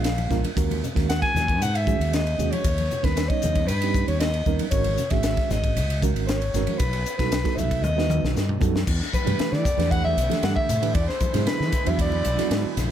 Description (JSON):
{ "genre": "electric jazz fusion", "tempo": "116 BPM", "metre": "4/4", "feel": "straight", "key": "E minor from 8.9 s", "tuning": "A4 = 440 Hz", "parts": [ { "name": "mellow soprano saxophone", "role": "melody", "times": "0.0-12.7 s", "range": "B4 to G#5", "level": "-27 LUFS", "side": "left 1 dB", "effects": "none" }, { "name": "mellow reed electric piano", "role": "accompaniment", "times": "0.0-12.9 s", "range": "D#3 to C#5", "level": "-29 LUFS", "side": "right 14 dB", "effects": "fast tremolo" }, { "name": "fretless electric bass", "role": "bass", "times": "0.0-12.9 s", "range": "G#1 to E3", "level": "-25 LUFS", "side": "equal", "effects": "none" }, { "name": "crisp fusion drum kit", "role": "drums", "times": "0.0-12.9 s", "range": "crash cymbal, hi-hat, kick drum, ride cymbal, snare drum, toms", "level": "-26 LUFS", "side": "left 1 dB", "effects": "none" }, { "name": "congas", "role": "percussion", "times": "0.2-12.9 s", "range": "none", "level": "-33 LUFS", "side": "left 5 dB", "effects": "none" }, { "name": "brassy analog pad", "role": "sustained chords", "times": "8.9-12.9 s", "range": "D3 to E4", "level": "-36 LUFS", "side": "left 3 dB", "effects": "lush chorus" } ], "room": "small room ambience", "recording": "none", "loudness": "-21 LUFS", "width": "side -10 dB against mid", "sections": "0.0-8.9 A section; 8.9-12.9 B section", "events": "drum fill 7.8-8.9", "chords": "0.0 A#7b9; 0.6 D#m7; 2.6 D#7b13; 4.7 G#9sus4; 6.8 B7b13; 8.9 Em7; 11.0 E7" }